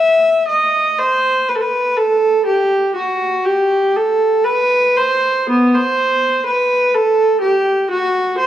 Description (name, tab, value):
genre	classical, baroque-style suite movement for unaccompanied viola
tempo	61 BPM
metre	3/4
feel	rubato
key	unclear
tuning	A4 = 438 Hz
part	rich viola	solo	0.0-8.5 s	B3 to E5	-13 LUFS	equal	none
room	moderate recital hall reverb, RT60 1.5 s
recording	dark, warm production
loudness	-13 LUFS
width	side -11 dB against mid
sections	0.0-8.5 A section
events	none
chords	none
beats	0.47 1.48 | 2.47 3.46 4.44 | 5.48 6.45 7.41 | 8.37